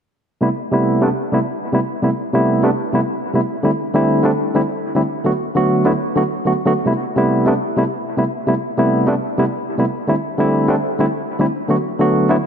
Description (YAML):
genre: future bass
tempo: 149 BPM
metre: 4/4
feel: half-time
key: A dorian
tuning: A4 = 439 Hz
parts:
  - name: barky tine electric piano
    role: accompaniment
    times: 0.4-12.4 s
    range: C3 to F#4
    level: -15 LUFS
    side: equal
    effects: low-pass filter, dub echo
room: moderate lush hall reverb, RT60 2.4 s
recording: dense, heavily limited modern master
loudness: -15 LUFS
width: side -7 dB against mid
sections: 0.4-12.5 A section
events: filter sweep on tine electric piano 0.4-12.5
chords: 0.4 Am9; 3.6 C69; 5.3 Bm7; 6.9 Am9; 10.1 C69; 11.7 Bm7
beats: | 0.42 0.82 1.22 1.63 | 2.03 2.43 2.83 3.24 | 3.64 4.04 4.45 4.85 | 5.25 5.65 6.06 6.46 | 6.86 7.26 7.67 8.07 | 8.47 8.88 9.28 9.68 | 10.08 10.49 10.89 11.29 | 11.69 12.10